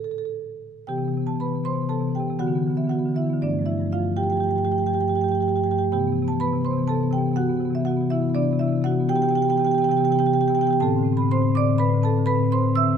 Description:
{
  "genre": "classical, contemporary piece for solo marimba",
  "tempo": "122 BPM",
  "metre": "5/4",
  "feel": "rubato",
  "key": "unclear",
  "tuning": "A4 = 440 Hz",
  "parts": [
    { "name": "marimba with medium hard mallets", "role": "solo", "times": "0.0-13.0 s", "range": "G2 to E6", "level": "-20 LUFS", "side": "equal", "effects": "none" }
  ],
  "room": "light reverb",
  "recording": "close, detailed microphones",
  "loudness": "-20 LUFS",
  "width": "side -7 dB against mid",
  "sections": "0.9-13.0 A section",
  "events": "none",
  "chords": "0.0 A7sus4; 0.9 Cmaj7; 2.4 D69; 3.4 Gsus2; 5.9 Cmaj7; 8.4 G6/C; 10.8 Amadd9",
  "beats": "0.34 | 0.87 1.38 1.90 2.40 2.91 | 3.41 3.90 4.40 4.91 5.42 | 5.91 6.40 6.89 7.38 7.88 | 8.37 8.85 9.34 9.82 10.31 | 10.81 11.30 11.79 12.28 12.77"
}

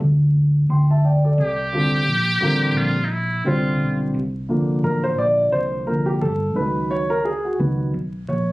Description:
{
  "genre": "hip hop, jazz-hop",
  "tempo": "87 BPM",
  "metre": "4/4",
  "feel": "swing 58% on 16ths",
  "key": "unclear",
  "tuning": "A4 = 439 Hz",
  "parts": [
    { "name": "hollow-body short-scale fingered electric bass", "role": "bass", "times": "0.0-8.5 s", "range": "G1 to D2", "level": "-20 LUFS", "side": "equal", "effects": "none" },
    { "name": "dark upright piano", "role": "accompaniment", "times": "0.7-8.5 s", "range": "D3 to C6", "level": "-21 LUFS", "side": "equal", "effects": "none" },
    { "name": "trumpet with metal mute", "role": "melody", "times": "1.4-4.0 s", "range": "Eb4 to G4", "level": "-22 LUFS", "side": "equal", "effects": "none" }
  ],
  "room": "light reverb",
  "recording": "recorded on a phone in the room, studio ambience, vinyl crackle, compression",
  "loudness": "-18 LUFS",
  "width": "side -20 dB against mid",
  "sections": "0.0-4.1 A section; 4.1-8.5 B section",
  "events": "upright piano solo 4.1-8.5",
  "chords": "0.0 Gsus4; 1.4 C9sus4; 6.6 Db9sus4",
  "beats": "0.00 0.69 | 1.38 2.07 2.76 3.45 | 4.14 4.83 5.52 6.21 | 6.90 7.59 8.28"
}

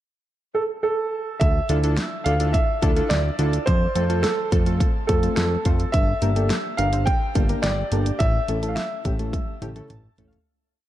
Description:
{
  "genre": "synth-pop",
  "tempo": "106 BPM",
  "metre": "4/4",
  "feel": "straight",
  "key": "D minor",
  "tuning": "A4 = 441 Hz",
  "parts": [
    { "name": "warm baby grand piano", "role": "melody", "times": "0.5-9.6 s", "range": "A4 to G5", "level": "-25 LUFS", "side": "right 2 dB", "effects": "shimmer reverb, digital delay" },
    { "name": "fat analog bass", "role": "bass", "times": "1.4-10.4 s", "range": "G1 to F2", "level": "-23 LUFS", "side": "equal", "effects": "none" },
    { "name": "pop drum kit", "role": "drums", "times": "1.4-10.5 s", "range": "hi-hat, kick drum, snare drum, toms", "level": "-23 LUFS", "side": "equal", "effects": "none" },
    { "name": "warm analog keys", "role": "accompaniment", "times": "1.7-10.5 s", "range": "A3 to A5", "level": "-28 LUFS", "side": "equal", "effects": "chorus, shimmer reverb" }
  ],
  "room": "light reverb, digital ambience",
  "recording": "dark, warm production",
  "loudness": "-19 LUFS",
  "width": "side -13 dB against mid",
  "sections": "0.0-1.4 pickup bar; 1.4-10.5 verse",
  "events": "fade-out 8.2-10.5; drum fill 9.3-10.5; synth keys fill 9.6-10.5",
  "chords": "0.0 N.C.; 1.4 Dmadd9; 3.7 F; 5.9 Gm; 8.2 A",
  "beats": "0.28 0.84 | 1.41 1.98 2.54 3.11 | 3.67 4.24 4.81 5.37 | 5.94 6.50 7.07 7.64 | 8.20 8.77 9.34 9.90"
}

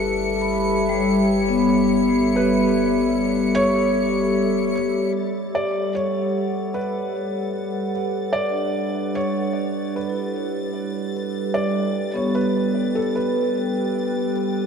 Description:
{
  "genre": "ambient",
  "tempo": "75 BPM",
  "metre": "4/4",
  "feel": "straight",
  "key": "G lydian",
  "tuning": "A4 = 441 Hz",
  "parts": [
    { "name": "warbly tape-like pad", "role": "sustained chords", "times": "0.0-14.7 s", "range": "G3 to G5", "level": "-23 LUFS", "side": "equal", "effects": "chorus, built-in reverb" },
    { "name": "vibraphone with soft mallets", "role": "arpeggios", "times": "0.0-14.7 s", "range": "G3 to B5", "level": "-24 LUFS", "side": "left 1 dB", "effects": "ping-pong delay" },
    { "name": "warm sub bass", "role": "bass", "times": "0.0-5.1 s", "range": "G1", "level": "-37 LUFS", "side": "equal", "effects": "none" },
    { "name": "bright chamber violin section", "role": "texture", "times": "0.0-14.7 s", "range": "A6 to C#7", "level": "-34 LUFS", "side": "left 3 dB", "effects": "none" },
    { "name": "felt-muted upright piano", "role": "melody", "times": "2.4-14.3 s", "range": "A4 to D5", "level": "-26 LUFS", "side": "equal", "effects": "ping-pong delay" }
  ],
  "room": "wet cathedral reverb, RT60 5.4 s",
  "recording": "in a vast, echoing space",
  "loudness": "-19 LUFS",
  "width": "side -6 dB against mid",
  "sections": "0.0-5.2 A section; 5.2-14.7 B section",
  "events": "fade-out on sub bass 0.0-5.2; fade-in on violin section 5.2-14.7",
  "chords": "0.0 A/G; 5.2 Gmaj7",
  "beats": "0.36 1.16 | 1.96 2.76 3.56 4.36 | 5.16 5.96 6.76 7.56 | 8.36 9.16 9.96 10.76 | 11.56 12.36 13.16 13.96"
}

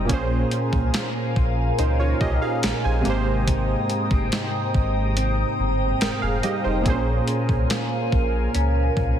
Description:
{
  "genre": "contemporary R&B",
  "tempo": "71 BPM",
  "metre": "4/4",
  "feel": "straight",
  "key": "unclear",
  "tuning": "A4 = 441 Hz",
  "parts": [
    { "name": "warm analog keys", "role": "accompaniment", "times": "0.0-9.2 s", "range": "Bb2 to Ab5", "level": "-26 LUFS", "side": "right 3 dB", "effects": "chorus" },
    { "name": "glassy FM pad", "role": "sustained chords", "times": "0.0-9.2 s", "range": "Bb4 to Eb6", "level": "-27 LUFS", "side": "equal", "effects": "ensemble chorus, built-in reverb, phaser" },
    { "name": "clean electric guitar", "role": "arpeggios", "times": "0.0-9.2 s", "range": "Ab2 to F4", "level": "-28 LUFS", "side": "left 1 dB", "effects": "wide subtle chorus" },
    { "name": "warm sub bass", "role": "bass", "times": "0.0-9.1 s", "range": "F1 to Db2", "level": "-24 LUFS", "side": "equal", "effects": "none" },
    { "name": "gated 80s digital drum machine", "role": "drums", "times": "0.1-9.2 s", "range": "hi-hat, kick drum, snare drum", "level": "-24 LUFS", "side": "equal", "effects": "gated reverb, gated reverb snare" }
  ],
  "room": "light reverb",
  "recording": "heavily compressed radio sound",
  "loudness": "-20 LUFS",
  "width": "side -9 dB against mid",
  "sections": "0.0-9.2 A section",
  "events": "none",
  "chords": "0.1 Bbm7; 3.1 Abmaj7; 6.9 Bbm7",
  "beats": "| 0.10 0.94 1.78 2.63 | 3.48 4.32 5.17 6.01 | 6.86 7.70 8.55"
}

